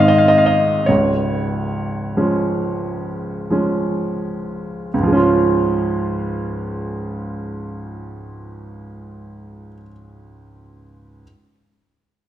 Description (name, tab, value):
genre	classical, romantic nocturne for solo piano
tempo	41-55 BPM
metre	3/4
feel	rubato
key	Db major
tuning	A4 = 440 Hz
part	clear grand piano	solo	0.0-11.2 s	Db1 to F5	-17 LUFS	right 1 dB	none
room	wet recital hall reverb, RT60 1.6 s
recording	none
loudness	-17 LUFS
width	side -11 dB against mid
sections	0.0-4.9 A section; 4.9-9.0 B section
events	slowing down 0.0-4.9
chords	0.0 Ab; 0.9 Db